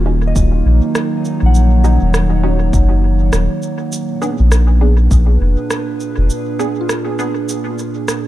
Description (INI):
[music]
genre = ambient dub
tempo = 101 BPM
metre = 4/4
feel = swing 59% on 16ths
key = Eb minor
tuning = A4 = 440 Hz
[part]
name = warbly tape-like pad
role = sustained chords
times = 0.0-8.3 s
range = Bb2 to Db5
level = -19 LUFS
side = right 2 dB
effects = chorus, built-in reverb
[part]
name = soft synth bell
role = arpeggios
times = 0.0-8.3 s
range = F4 to Gb5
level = -29 LUFS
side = left 5 dB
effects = chorus, phaser, dub echo
[part]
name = soft dub sub bass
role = bass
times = 0.0-6.3 s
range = Eb1 to Bb1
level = -11 LUFS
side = equal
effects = none
[part]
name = filtered dub chord stab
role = stabs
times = 0.1-7.3 s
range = Cb4 to Ab4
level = -25 LUFS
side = right 1 dB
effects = wide subtle chorus, cassette tape, dub echo
[part]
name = electronic cabasa and rim click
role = drums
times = 0.4-8.2 s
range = none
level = -23 LUFS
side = right 1 dB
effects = dub echo
[part]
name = electronic kick drum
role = drums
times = 0.4-5.2 s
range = none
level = -16 LUFS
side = equal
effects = overdrive
[sound]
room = light reverb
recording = dark, warm production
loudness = -12 LUFS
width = side -14 dB against mid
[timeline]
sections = 0.0-8.3 A section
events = break 6.3-8.3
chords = 0.0 Ebm7; 3.9 Bb7b9